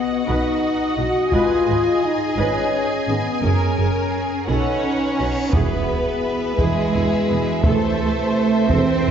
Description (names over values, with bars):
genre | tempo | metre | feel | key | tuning
cinematic, epic orchestral film score | 57 BPM (dotted quarters) | 6/8 | straight | unclear | A4 = 441 Hz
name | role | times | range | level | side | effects
rich symphonic violin section | melody | 0.0-9.1 s | G#4 to Ab5 | -28 LUFS | left 2 dB | none
clear symphonic violin section | second line | 0.0-9.1 s | Gb4 to E5 | -29 LUFS | left 1 dB | none
warm symphonic viola section | accompaniment | 0.0-9.1 s | B3 to Eb5 | -27 LUFS | right 1 dB | none
mellow French horn section | sustained chords | 0.0-9.1 s | Cb4 to E5 | -23 LUFS | left 3 dB | none
rich symphonic cello section | bass | 0.3-9.1 s | Gb2 to Db4 | -24 LUFS | right 3 dB | none
rich symphonic double bass section | bass | 0.3-9.1 s | Gb1 to E2 | -26 LUFS | right 2 dB | none
solo taiko drums | drums | 1.3-9.1 s | none | -23 LUFS | right 1 dB | none
reverse cymbal and impact | sound effects | 5.1-7.6 s | none | -33 LUFS | right 1 dB | none
warm trombone section | sustained chords | 5.5-9.1 s | B2 to E3 | -29 LUFS | right 4 dB | none
dark tuba | bass | 5.5-9.1 s | E1 | -27 LUFS | right 2 dB | none
room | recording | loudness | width
wet scoring stage reverb, RT60 1.9 s | heard from further back in the room, nothing above 7.6 kHz | -17 LUFS | side -8 dB against mid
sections
0.0-5.5 A section; 5.5-9.1 B section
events
reverse cymbal 5.1-5.5; impact 5.5-7.6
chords
0.0 Cb; 1.3 Abm; 3.4 Gbadd9; 4.5 Cb7; 5.5 E; 7.6 Am/E